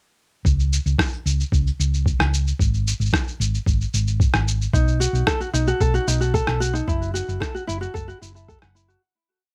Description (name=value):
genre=folktronica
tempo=112 BPM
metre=4/4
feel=straight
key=F# dorian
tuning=A4 = 440 Hz
part: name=electronic kick drum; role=drums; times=0.4-8.6 s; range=none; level=-24 LUFS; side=equal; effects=overdrive
part: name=hollow-body short-scale fingered electric bass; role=bass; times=0.5-8.9 s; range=F#1 to C#2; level=-24 LUFS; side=equal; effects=none
part: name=electronic shaker and rim click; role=drums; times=0.5-9.0 s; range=none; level=-28 LUFS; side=equal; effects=overdrive
part: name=ukulele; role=arpeggios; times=4.7-9.0 s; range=D#4 to F#5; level=-27 LUFS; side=equal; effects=digital delay
room=little or no reverb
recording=none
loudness=-22 LUFS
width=mono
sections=0.5-9.0 groove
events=fade-out 6.2-9.0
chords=0.5 N.C.; 4.7 B7; 6.9 F#m7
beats=| 0.45 0.99 1.52 2.06 | 2.59 3.13 3.67 4.20 | 4.74 5.27 5.81 6.34 | 6.88 7.42 7.95 8.49